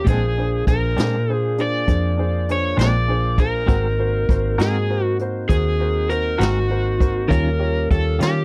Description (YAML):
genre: slow blues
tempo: 66 BPM (dotted quarters)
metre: 12/8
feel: straight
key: unclear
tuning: A4 = 438 Hz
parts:
  - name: overdriven slide guitar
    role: melody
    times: 0.0-8.4 s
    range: Gb4 to D5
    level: -25 LUFS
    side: equal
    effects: none
  - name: clean electric guitar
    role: accompaniment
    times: 0.0-8.4 s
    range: Bb2 to Bb4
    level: -27 LUFS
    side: equal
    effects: tremolo
  - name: tonewheel organ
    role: sustained chords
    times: 0.0-8.4 s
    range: G3 to F5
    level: -33 LUFS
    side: equal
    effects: slow rotary speaker, overdrive
  - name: vintage muted fingered electric bass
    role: bass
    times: 0.0-8.4 s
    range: Ab1 to Eb3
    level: -24 LUFS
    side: equal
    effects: none
  - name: clear upright piano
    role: accompaniment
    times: 0.1-8.4 s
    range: D4 to Eb5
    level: -31 LUFS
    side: equal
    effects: none
  - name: jazz brush drum kit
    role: drums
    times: 0.1-8.4 s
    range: hi-hat, kick drum, snare drum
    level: -22 LUFS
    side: equal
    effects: none
room: little or no reverb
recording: dry, close 1970s-style studio recording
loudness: -20 LUFS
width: mono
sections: 0.0-8.4 A section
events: none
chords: 0.1 Bb9; 3.7 Ab9; 7.3 Eb9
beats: | 0.07 0.97 1.88 2.78 | 3.69 4.59 5.50 6.40 | 7.31 8.21